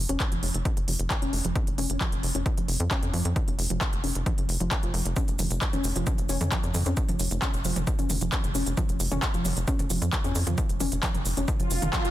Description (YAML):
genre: driving peak-time techno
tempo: 133 BPM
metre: 4/4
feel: straight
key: unclear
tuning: A4 = 441 Hz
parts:
  - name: tight sequencer bass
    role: bass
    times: 0.0-12.1 s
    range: F1 to F2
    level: -28 LUFS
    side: equal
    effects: sidechain pumping
  - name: warbly dusty pluck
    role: riff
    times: 0.1-12.1 s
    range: Eb3 to F4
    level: -32 LUFS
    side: equal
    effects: chorus, tube saturation, sidechain pumping, tape echo
  - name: techno drum kit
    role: drums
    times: 0.1-12.1 s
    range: handclaps, hi-hat, shaker, toms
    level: -31 LUFS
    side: equal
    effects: overdrive, sidechain pumping on hats, small room ambience, sidechain pumping on cymbals, sidechain pumping on perc, sidechain pumping on toms
  - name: electronic kick drum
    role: drums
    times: 0.2-12.0 s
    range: none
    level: -28 LUFS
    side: equal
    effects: small room ambience
  - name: swell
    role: sound effects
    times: 11.6-12.1 s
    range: none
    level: -32 LUFS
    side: right 2 dB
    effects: none
room: light reverb, digital ambience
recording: dense, heavily limited modern master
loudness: -24 LUFS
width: side -14 dB against mid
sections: 0.0-12.1 A section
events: filter sweep on synth arpeggio sound 0.0-12.1; swell 11.6-12.1; band accent 11.9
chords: none